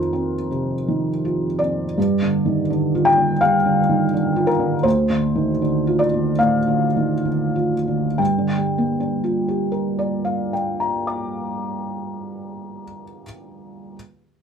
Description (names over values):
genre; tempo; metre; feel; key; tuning
neoclassical minimalist piano; 63-84 BPM; 4/4; rubato; G minor; A4 = 444 Hz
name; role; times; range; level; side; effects
felt-muted upright piano; solo; 0.0-14.0 s; D2 to D6; -18 LUFS; equal; none
room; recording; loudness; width
moderate studio ambience, RT60 0.4 s; band playing live in one room; -18 LUFS; side -7 dB against mid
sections
0.0-2.0 A section; 2.0-8.2 B section; 8.2-11.8 C section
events
slowing down 0.5-8.2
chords
0.0 F7sus4; 2.0 G5; 4.8 Dm; 8.2 Gm7